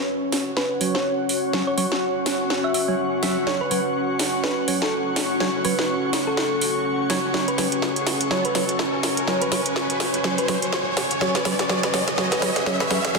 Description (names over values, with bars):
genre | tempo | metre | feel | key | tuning
bass house | 124 BPM | 4/4 | swing 58% on 16ths | F# minor | A4 = 440 Hz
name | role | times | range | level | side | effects
deep dark ambient pad | sustained chords | 0.0-13.2 s | C#4 to F#5 | -28 LUFS | left 1 dB | chorus, built-in reverb, vintage 12-bit sampler grit
riser | sound effects | 2.4-13.2 s | none | -31 LUFS | right 1 dB | none
airy breathy pad | texture | 0.0-13.2 s | C#4 to C#6 | -27 LUFS | left 1 dB | chorus
house drum kit | drums | 0.3-13.2 s | hi-hat, snare drum | -25 LUFS | equal | high-pass filter on snare, studio reverb, high-pass filter on hats
thumb-piano-like synth pluck | melody | 0.6-13.0 s | A4 to E5 | -29 LUFS | left 2 dB | chorus, dub echo
percussive organ stab | stabs | 0.8-13.2 s | F#3 to E5 | -28 LUFS | right 3 dB | analog chorus, dub echo
room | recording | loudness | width
wet lush hall reverb, RT60 1.5 s | dense, heavily limited modern master | -20 LUFS | side -2 dB against mid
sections
0.0-13.2 A section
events
build-up 0.0-13.2; drum fill 0.0-13.2; riser 2.4-13.2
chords
0.0 F#5